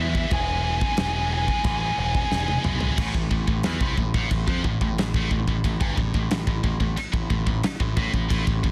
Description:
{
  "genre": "heavy metal",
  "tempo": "90 BPM",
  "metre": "4/4",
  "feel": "straight",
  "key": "unclear",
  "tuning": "A4 = 440 Hz",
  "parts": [
    { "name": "high-gain lead guitar", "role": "melody", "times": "0.0-2.6 s", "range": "E5 to G#5", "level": "-31 LUFS", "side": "equal", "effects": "distortion, digital delay" },
    { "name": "scooped high-gain guitar", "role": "riff", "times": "0.0-8.7 s", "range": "G2 to G#3", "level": "-31 LUFS", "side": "equal", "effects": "distortion" },
    { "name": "growling picked electric bass", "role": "bass", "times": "0.0-8.7 s", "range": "E1 to F2", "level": "-29 LUFS", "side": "equal", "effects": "overdrive" },
    { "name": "big rock drum kit", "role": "drums", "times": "0.1-8.7 s", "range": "china cymbal, crash cymbal, kick drum, snare drum, toms", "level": "-28 LUFS", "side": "equal", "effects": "none" }
  ],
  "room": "little or no reverb",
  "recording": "dense, heavily limited modern master",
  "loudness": "-24 LUFS",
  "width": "mono",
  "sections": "0.0-3.0 A section; 3.0-8.7 B section",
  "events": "drum fill 2.3-3.0",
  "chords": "0.0 E; 3.0 N.C.",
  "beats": "| 0.32 0.98 1.65 2.31 | 2.98 3.65 4.31 4.97 | 5.64 6.31 6.97 7.64 | 8.30"
}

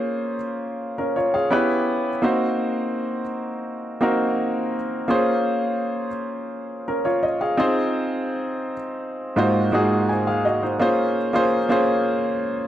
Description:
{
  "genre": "R&B",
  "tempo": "84 BPM",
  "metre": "4/4",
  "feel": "straight",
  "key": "Bb minor",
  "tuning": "A4 = 442 Hz",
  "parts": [
    { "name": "warm concert grand piano", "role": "solo", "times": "0.0-12.7 s", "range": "Ab2 to Ab5", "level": "-20 LUFS", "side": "equal", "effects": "none" }
  ],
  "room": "light reverb, studio reverb",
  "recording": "dry, gritty hardware recording, transformer saturation",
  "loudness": "-20 LUFS",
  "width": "side -12 dB against mid",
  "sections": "0.0-10.8 A section; 10.8-12.7 B section",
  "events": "none",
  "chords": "0.0 Bbm7; 1.5 C#m7b5; 2.2 Cm7b5; 5.1 Bbm7; 7.6 Fm7; 9.4 Ab13; 10.8 Bbm9",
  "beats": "0.09 0.80 1.52 | 2.23 2.95 3.66 4.38 | 5.09 5.80 6.52 7.23 | 7.95 8.66 9.38 10.09 | 10.80 11.52 12.23"
}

